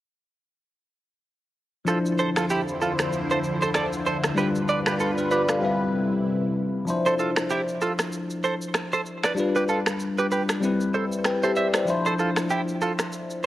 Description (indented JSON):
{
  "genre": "afrobeats",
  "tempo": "96 BPM",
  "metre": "4/4",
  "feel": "swing 58% on 16ths",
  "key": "D dorian",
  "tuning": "A4 = 441 Hz",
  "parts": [
    { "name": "bell-like tine electric piano", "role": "accompaniment", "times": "1.8-13.5 s", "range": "F3 to G5", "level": "-25 LUFS", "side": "left 2 dB", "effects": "phaser" },
    { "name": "lush unison pad", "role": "sustained chords", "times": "2.3-6.9 s", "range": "C3 to C5", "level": "-29 LUFS", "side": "equal", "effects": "chorus, phaser" },
    { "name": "direct-recorded clean electric guitar", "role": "riff", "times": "1.9-12.9 s", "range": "E4 to E5", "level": "-26 LUFS", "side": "right 3 dB", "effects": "analog chorus, digital delay" },
    { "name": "electronic shaker, finger snaps and rim click", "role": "drums", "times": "1.9-13.5 s", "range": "none", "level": "-29 LUFS", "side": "equal", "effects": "none" }
  ],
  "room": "light reverb",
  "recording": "worn, warbling old tape, cassette tape, warbly pitch drift, lossy compression artefacts",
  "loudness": "-22 LUFS",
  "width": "side -14 dB against mid",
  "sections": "1.9-6.9 A section; 6.9-13.5 B section",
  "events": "drums muted 5.6-6.9; kick muted 6.9-13.5",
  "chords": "1.9 Dm9; 4.4 G7; 5.6 Cmaj7; 6.9 Dm9; 9.4 G7; 10.6 Cmaj7; 11.9 Dm9",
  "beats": "| 1.87 2.50 3.12 3.75 | 4.37 5.00 5.62 6.25 | 6.87 7.50 8.12 8.75 | 9.37 10.00 10.62 11.25 | 11.87 12.50 13.12"
}